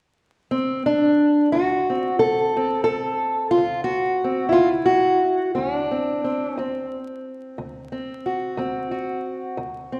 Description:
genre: acoustic country blues, solo or duo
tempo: 60 BPM (dotted quarters)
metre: 12/8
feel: straight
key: D mixolydian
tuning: A4 = 440 Hz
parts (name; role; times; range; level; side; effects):
- fingerpicked steel-string acoustic guitar; solo; 0.5-10.0 s; D2 to A4; -22 LUFS; equal; none
room: wet recital hall reverb, RT60 1.5 s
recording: recorded in a church or concert hall, vinyl crackle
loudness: -22 LUFS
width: mono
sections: 0.0-1.5 A section; 1.5-10.0 B section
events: none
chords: 0.0 N.C.; 1.5 D7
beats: 0.54 | 1.54 2.54 3.55 4.55 | 5.56 6.56 7.57 8.57 | 9.58

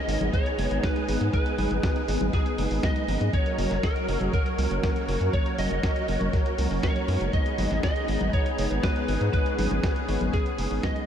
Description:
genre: italo disco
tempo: 120 BPM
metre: 4/4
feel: straight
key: unclear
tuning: A4 = 439 Hz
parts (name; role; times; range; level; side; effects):
- lightly driven lead guitar; melody; 0.0-11.1 s; G#4 to D#5; -31 LUFS; equal; ensemble chorus, analog delay
- warm analog pad; sustained chords; 0.0-11.1 s; F#3 to C#5; -31 LUFS; left 1 dB; chorus
- bell-like tine electric piano; stabs; 0.1-11.1 s; F#3 to D#5; -33 LUFS; right 4 dB; vintage 12-bit sampler grit
- round analog bass; bass; 0.1-10.8 s; F#1 to G#2; -27 LUFS; equal; tube saturation
- dusty soul sampler-style drum kit; drums; 0.1-11.1 s; congas, hi-hat, snare drum; -33 LUFS; left 1 dB; none
- electronic kick drum; drums; 0.3-10.9 s; none; -27 LUFS; equal; none
room: moderate huge ambient reverb, RT60 7.5 s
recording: dreamy mix soaked in reverb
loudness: -23 LUFS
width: side -9 dB against mid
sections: 0.0-11.1 A section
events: fade-out 10.0-11.1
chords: 0.0 F#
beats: 0.33 0.83 | 1.33 1.83 2.33 2.83 | 3.33 3.83 4.33 4.83 | 5.33 5.83 6.33 6.83 | 7.33 7.83 8.33 8.83 | 9.33 9.83 10.33 10.83

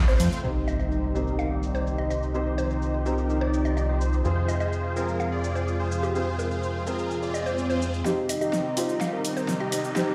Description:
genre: EDM, festival progressive house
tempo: 126 BPM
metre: 4/4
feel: straight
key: C minor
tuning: A4 = 435 Hz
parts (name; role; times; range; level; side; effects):
- mallet-like synth pluck; melody; 0.0-9.8 s; G4 to F5; -36 LUFS; equal; chorus, phaser, delay
- lush unison pad; sustained chords; 0.0-10.1 s; C3 to F4; -34 LUFS; equal; chorus
- plucky unison lead; arpeggios; 0.0-0.4, 8.1-10.1 s; F4 to C5; -34 LUFS; equal; subtle chorus, cassette tape, delay
- supersaw chords; riff; 0.0-10.1 s; C4 to D5; -34 LUFS; equal; analog chorus, low-pass filter, delay
- fat analog bass; bass; 0.0-8.0 s; C2 to F2; -30 LUFS; equal; none
- big-room dance drum kit; drums; 0.1-10.1 s; cabasa, hi-hat, snare drum; -36 LUFS; equal; overdrive, low-pass filter on perc, low-pass filter on hats, low-pass filter on snare
- felt-muted upright piano; accompaniment; 0.4-10.1 s; C4 to C5; -36 LUFS; equal; delay
- impact, swell and riser; sound effects; 0.4-2.3, 7.3-10.1 s; none; -36 LUFS; equal; none
room: moderate digital room reverb, RT60 1.0 s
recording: played on a big sound system in a bare room, stone room reverb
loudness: -26 LUFS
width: mono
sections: 0.4-8.1 A section; 8.1-10.1 B section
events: band accent 0.0; impact 0.4-2.3; filter sweep on supersaw synth 0.4-8.1, 8.1-10.1; filter sweep on analog synth pad 0.4-8.1; swell 7.3-8.1; build-up 8.1-10.1; drum fill 8.1-10.1; filter sweep on digital synth lead 8.1-10.1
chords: 0.4 Cm; 4.2 Fm; 8.1 Cm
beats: | 0.44 0.91 1.39 1.86 | 2.34 2.82 3.29 3.77 | 4.25 4.72 5.20 5.67 | 6.15 6.63 7.10 7.58 | 8.06 8.53 9.01 9.48 | 9.96

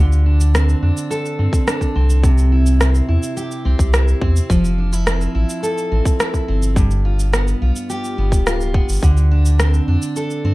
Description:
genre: folktronica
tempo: 106 BPM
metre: 4/4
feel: straight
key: G mixolydian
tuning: A4 = 440 Hz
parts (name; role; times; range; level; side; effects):
- picked steel-string acoustic guitar; arpeggios; 0.0-10.5 s; G2 to A4; -21 LUFS; right 1 dB; low-pass filter, tape echo
- warm sub bass; bass; 0.0-10.5 s; D1 to G2; -15 LUFS; equal; none
- electronic shaker and rim click; drums; 0.1-10.4 s; none; -22 LUFS; equal; none
- electronic kick drum; drums; 1.5-9.1 s; none; -16 LUFS; equal; none
room: little or no reverb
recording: dark, warm production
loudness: -14 LUFS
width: side -19 dB against mid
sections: 0.0-10.5 A section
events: none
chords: 0.0 Dm7; 2.2 C; 4.5 Fmaj7; 6.8 G7; 9.0 Dm7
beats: 0.54 1.10 1.67 | 2.24 2.80 3.37 3.94 | 4.50 5.07 5.63 6.20 | 6.77 7.33 7.90 8.46 | 9.03 9.60 10.16

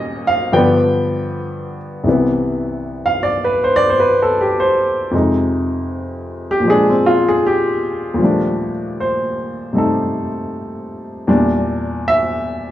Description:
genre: solo jazz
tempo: 78 BPM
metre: 4/4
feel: swing 66% on 8ths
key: unclear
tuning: A4 = 440 Hz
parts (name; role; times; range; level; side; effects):
- warm upright piano; solo; 0.0-12.7 s; C2 to G5; -15 LUFS; equal; none
room: wet recital hall reverb, RT60 1.3 s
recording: recorded in a church or concert hall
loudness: -14 LUFS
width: side -12 dB against mid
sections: 0.0-2.1 A section; 2.1-12.7 B section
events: upright piano solo 2.1-12.7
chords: 0.0 Eb7; 0.5 G7; 2.1 Cmaj7; 5.1 Fm7; 6.7 Bb7; 8.2 Ebmaj9#11; 11.3 Em7b5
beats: 0.53 1.29 | 2.06 2.83 3.60 4.36 | 5.13 5.90 6.67 7.44 | 8.21 8.97 9.74 10.51 | 11.28 12.04

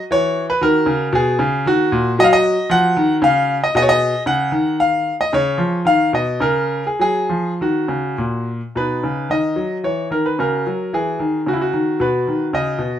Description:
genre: classical, baroque-style suite movement for grand piano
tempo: 100-118 BPM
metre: 3/4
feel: rubato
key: F# major, B major from 8.7 s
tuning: A4 = 441 Hz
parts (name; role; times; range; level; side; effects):
- bright grand piano; solo; 0.0-13.0 s; A#2 to F#5; -15 LUFS; equal; none
room: light reverb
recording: dark, warm production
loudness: -15 LUFS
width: side -10 dB against mid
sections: 0.0-8.7 A section; 8.7-13.0 A section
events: none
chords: 0.0 B5; 0.6 B; 2.2 D#m; 3.7 G#m7/B; 5.3 C#; 5.9 B/D#; 6.4 N.C.; 7.0 F#; 8.7 B; 10.4 F#7/C#; 12.0 B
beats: 0.09 | 0.61 1.12 1.65 | 2.17 2.69 3.21 | 3.74 4.27 4.79 | 5.32 5.85 6.41 | 6.98 7.58 8.17 | 8.75 9.30 9.84 | 10.38 10.93 11.46 | 12.00 12.53

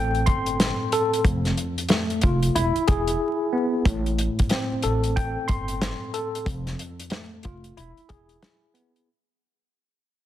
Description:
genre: hip hop, boom-bap hip-hop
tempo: 92 BPM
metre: 4/4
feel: swing 62% on 16ths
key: A minor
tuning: A4 = 441 Hz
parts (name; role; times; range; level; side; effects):
- tine electric piano; accompaniment; 0.0-9.1 s; F2 to C6; -25 LUFS; left 1 dB; overdrive, fast stereo tremolo, cassette tape, high-pass filter, low-pass filter
- upright bass; bass; 0.0-8.4 s; E1 to A1; -27 LUFS; equal; none
- warm soul drum kit; drums; 0.1-9.1 s; hi-hat, kick drum, snare drum; -24 LUFS; equal; none
room: small room ambience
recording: dense, heavily limited modern master, vinyl crackle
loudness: -21 LUFS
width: side -12 dB against mid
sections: 0.0-3.9 A section; 3.9-9.1 B section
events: break 3.2-3.9; fade-out 3.9-9.1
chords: 0.0 Am7; 1.2 F; 2.6 E; 3.9 Am7; 6.5 F; 7.8 E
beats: 0.60 | 1.25 1.90 2.55 3.21 | 3.86 4.51 5.16 5.81 | 6.47 7.12 7.77 8.42

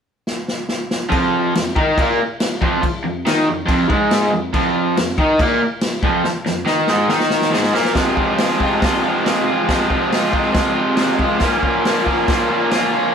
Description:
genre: garage rock duo or trio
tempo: 140 BPM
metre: 4/4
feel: straight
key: F minor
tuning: A4 = 440 Hz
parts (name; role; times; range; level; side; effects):
- vintage drum kit; drums; 0.3-12.8 s; crash cymbal, hi-hat, kick drum, snare drum; -21 LUFS; equal; none
- raw garage guitar; riff; 1.1-13.1 s; F2 to F4; -16 LUFS; equal; overdrive
room: wet studio reverb, RT60 0.8 s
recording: band playing live in one room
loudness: -15 LUFS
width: side -7 dB against mid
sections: 0.0-1.1 A section; 1.1-8.0 B section; 8.0-13.1 C section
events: drum fill 0.3-1.1, 6.2-8.0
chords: 0.0 N.C.; 1.1 Fm; 11.4 Bbm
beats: 0.26 0.69 | 1.11 1.54 1.97 2.39 | 2.82 3.25 3.68 4.10 | 4.53 4.96 5.39 5.82 | 6.24 6.67 7.10 7.53 | 7.96 8.39 8.82 9.26 | 9.69 10.12 10.55 10.98 | 11.42 11.85 12.28 12.72

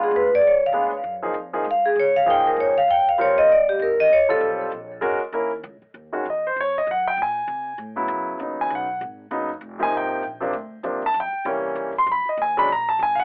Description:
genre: jazz, small-group swing and bop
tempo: 196 BPM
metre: 4/4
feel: swing 60% on 8ths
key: unclear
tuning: A4 = 440 Hz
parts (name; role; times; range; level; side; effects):
- vibraphone with medium mallets; melody; 0.0-4.4 s; G4 to G5; -20 LUFS; equal; analog delay
- warm concert grand piano; accompaniment; 0.0-13.2 s; C3 to C6; -25 LUFS; equal; none
- upright bass; bass; 0.0-13.2 s; F1 to C3; -44 LUFS; equal; none
room: moderate studio ambience, RT60 0.5 s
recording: home recording on cassette, telephone sound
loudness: -22 LUFS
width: mono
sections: 0.0-5.9 A section; 5.9-13.2 A section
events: vibraphone solo 0.0-5.9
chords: 0.0 C#7b9; 1.0 F#maj9; 2.3 A#5; 2.9 D#13 (rootless); 3.5 D#sus4/G# (rootless); 4.1 F; 4.7 G#9sus4; 5.3 D#5; 5.9 Ebm9; 7.2 Bbsus2; 7.8 Aadd9; 8.4 Abm7; 9.6 Fm7; 10.2 Bbadd9; 10.8 Ebmaj9; 11.5 C7b9; 12.1 Ebm11; 12.7 Gbadd9 (rootless)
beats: 0.12 0.42 0.73 | 1.04 1.34 1.65 1.96 | 2.26 2.57 2.88 3.19 | 3.49 3.80 4.11 4.41 | 4.72 5.03 5.33 5.64 | 5.94 6.25 6.56 6.86 | 7.17 7.48 7.78 8.09 | 8.39 8.70 9.01 9.31 | 9.62 9.93 10.23 10.54 | 10.85 11.15 11.46 11.77 | 12.07 12.38 12.69 12.99

